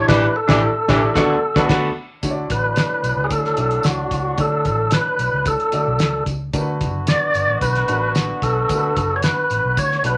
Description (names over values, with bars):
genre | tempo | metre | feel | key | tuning
uptempo 1960s-style soul | 111 BPM | 4/4 | straight | D major | A4 = 441 Hz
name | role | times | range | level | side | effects
tonewheel organ | melody | 0.0-10.2 s | F#4 to D5 | -22 LUFS | equal | overdrive, fast rotary speaker
warm grand piano | accompaniment | 0.0-10.2 s | A2 to D5 | -26 LUFS | equal | none
vintage muted fingered electric bass | bass | 0.0-10.2 s | F#1 to D2 | -27 LUFS | equal | none
mellow horn section | second line | 0.1-10.2 s | A2 to G4 | -29 LUFS | equal | tube saturation
cloth-damped thuddy drum kit | drums | 0.1-10.2 s | crash cymbal, hi-hat, kick drum, snare drum | -24 LUFS | equal | none
electric guitar through a small old amp | riff | 1.2-1.9 s | A3 to F#4 | -26 LUFS | equal | none
tambourine | percussion | 2.2-10.2 s | none | -40 LUFS | equal | none
room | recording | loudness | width
moderate studio ambience, RT60 0.5 s | none | -19 LUFS | mono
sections
0.0-2.2 A section; 2.2-10.2 B section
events
band accent 0.1-2.2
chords
0.0 A7sus4; 1.2 D6; 2.2 D; 6.5 Bm7